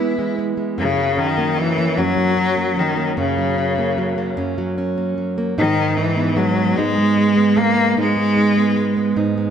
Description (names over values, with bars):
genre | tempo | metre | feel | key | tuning
pop | 50 BPM (dotted quarters) | 6/8 | straight | unclear | A4 = 437 Hz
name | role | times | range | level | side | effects
bright cello | melody | 0.0-9.1 s | C#3 to E4 | -18 LUFS | left 1 dB | none
fingerpicked plugged-in steel-string acoustic guitar | accompaniment | 0.0-9.5 s | F#2 to E4 | -20 LUFS | right 3 dB | none
room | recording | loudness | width
moderate concert hall reverb, RT60 2.0 s | none | -16 LUFS | side -8 dB against mid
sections
0.8-9.5 A section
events
none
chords
0.0 E; 0.8 F#; 5.6 G#m